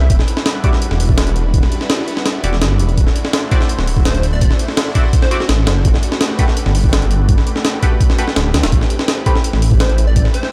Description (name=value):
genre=drum and bass, jungle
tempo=167 BPM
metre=4/4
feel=straight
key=A dorian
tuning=A4 = 440 Hz
part: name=plucky unison lead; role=melody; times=0.0-0.1, 4.1-5.5, 9.8-10.5 s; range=F#4 to E5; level=-29 LUFS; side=equal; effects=subtle chorus, dub echo
part: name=lush unison pad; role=sustained chords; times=0.0-10.5 s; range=G3 to C5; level=-28 LUFS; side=equal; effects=chorus, phaser
part: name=detuned saw bass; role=bass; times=0.0-10.2 s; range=D1 to D2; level=-18 LUFS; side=equal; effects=tube saturation
part: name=breakbeat sampler-style drum kit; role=drums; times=0.1-10.5 s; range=hi-hat, kick drum, snare drum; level=-17 LUFS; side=equal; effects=none
part: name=band-passed chord stab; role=stabs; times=0.6-9.3 s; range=G3 to D5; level=-28 LUFS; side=equal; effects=chorus, phaser, dub echo
room=digital ambience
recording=dry, gritty hardware recording, transformer saturation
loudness=-15 LUFS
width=mono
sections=0.0-10.5 A section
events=none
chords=0.1 Em9; 3.0 D9; 5.8 Gmaj9; 8.7 Am9